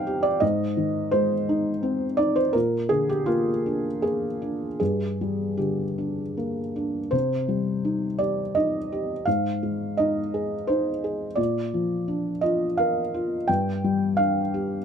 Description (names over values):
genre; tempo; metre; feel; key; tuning
neoclassical minimalist piano; 76-87 BPM; 3/4; rubato; C minor; A4 = 439 Hz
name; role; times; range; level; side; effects
felt-muted upright piano; solo; 0.0-14.8 s; G2 to G5; -22 LUFS; equal; none
room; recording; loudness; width
light reverb; close, detailed microphones; -22 LUFS; side -7 dB against mid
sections
0.0-7.1 A section; 7.1-14.8 B section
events
none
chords
0.4 Ab; 2.5 Bb; 4.8 Gm; 7.1 Cm; 9.3 Ab; 11.4 Bb; 13.5 G5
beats
| 0.42 1.13 1.83 | 2.55 3.28 4.02 | 4.80 5.59 6.37 | 7.13 7.85 8.56 | 9.27 9.98 10.68 | 11.38 12.09 12.79 | 13.48 14.19